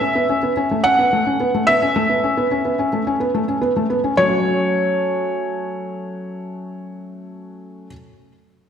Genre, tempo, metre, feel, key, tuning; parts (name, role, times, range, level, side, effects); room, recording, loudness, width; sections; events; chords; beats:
electronica; 108 BPM; 4/4; straight; F# minor; A4 = 440 Hz
felt-muted upright piano; melody; 0.0-7.9 s; C#5 to F#5; -19 LUFS; equal; tape echo
felt-muted upright piano; riff; 0.0-7.9 s; F#3 to F#4; -20 LUFS; equal; tape echo
wet scoring stage reverb, RT60 1.5 s; -16 LUFS; side -8 dB against mid
0.0-4.2 A section; 4.2-6.4 B section
drop 0.0-4.2
0.0 Aadd9; 4.2 F#m
0.29 0.85 1.40 | 1.96 2.51 3.07 3.62 | 4.18 4.74 5.29 5.85